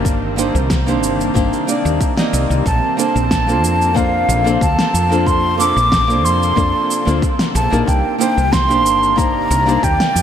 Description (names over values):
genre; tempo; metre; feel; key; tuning
sunset chillout; 92 BPM; 4/4; straight; Bb major; A4 = 440 Hz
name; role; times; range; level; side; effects
nylon-string guitar; accompaniment; 0.0-9.8 s; Bb3 to Eb5; -19 LUFS; moving between left 5 dB and right 4 dB; auto-pan, ping-pong delay
shimmering ambient pad; sustained chords; 0.0-10.2 s; C3 to D5; -23 LUFS; right 1 dB; chorus, built-in reverb
woody fretless electric bass; bass; 0.0-10.2 s; G1 to F2; -19 LUFS; equal; none
electronic kick drum; drums; 0.1-10.0 s; none; -20 LUFS; equal; none
electronic shaker and snare drum; drums; 0.1-10.2 s; none; -22 LUFS; equal; overdrive, gated reverb
mellow hollow jazz flute; melody; 2.7-10.2 s; F5 to D6; -16 LUFS; equal; ping-pong delay
room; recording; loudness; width
wet plate reverb, RT60 2.0 s; bright 1980s-style digital production; -13 LUFS; side -9 dB against mid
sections
0.0-10.2 A section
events
none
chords
0.0 Cm9; 2.7 Bbmaj9; 7.9 Cm9